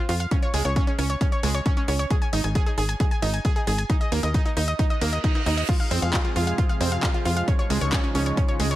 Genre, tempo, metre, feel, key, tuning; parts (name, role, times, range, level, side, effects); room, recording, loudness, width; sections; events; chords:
uplifting trance; 134 BPM; 4/4; straight; A4 = 440 Hz
analog pluck; arpeggios; 0.1-8.8 s; Ab3 to Ab5; -27 LUFS; right 3 dB; chorus, sidechain pumping, dub echo
tight sequencer bass; bass; 0.1-8.8 s; Ab1 to F2; -24 LUFS; equal; sidechain pumping
house drum kit; drums; 0.1-8.8 s; crash cymbal, handclaps, hi-hat; -31 LUFS; left 3 dB; overdrive
electronic kick drum; drums; 0.3-8.5 s; -23 LUFS; equal; overdrive
reverse cymbal; sound effects; 5.0-5.7 s; -32 LUFS; right 4 dB
lush unison pad; sustained chords; 5.7-8.8 s; C3 to Ab4; -30 LUFS; equal; chorus, sidechain pumping
little or no reverb; -21 LUFS; side -15 dB against mid
0.0-8.8 A section
reverse cymbal 5.0-5.7
0.3 Db5; 2.1 Ab5; 3.9 Eb5; 5.7 Fm; 7.5 Dbadd9